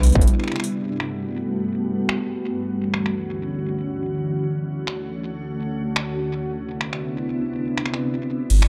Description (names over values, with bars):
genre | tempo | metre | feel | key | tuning
IDM | 124 BPM | 4/4 | straight | unclear | A4 = 445 Hz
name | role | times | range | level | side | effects
glassy FM pad | sustained chords | 0.0-8.7 s | C2 to B4 | -26 LUFS | equal | ensemble chorus, built-in reverb
warm sub bass | bass | 0.0-0.3, 8.5-8.7 s | G1 to C2 | -18 LUFS | equal | none
booming analog drum machine | drums | 0.0-8.7 s | crash cymbal, finger snaps, hi-hat | -30 LUFS | equal | low-pass filter on hats, low-pass filter on snare, low-pass filter on cymbals, low-pass filter on room, tape echo
room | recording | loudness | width
moderate lush hall reverb, RT60 1.6 s | dark, warm production | -25 LUFS | mono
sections
0.8-8.5 A section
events
break 0.3-0.8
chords
0.0 Cmaj7; 0.8 Gmaj7; 2.7 Dmaj7; 6.6 Cmaj7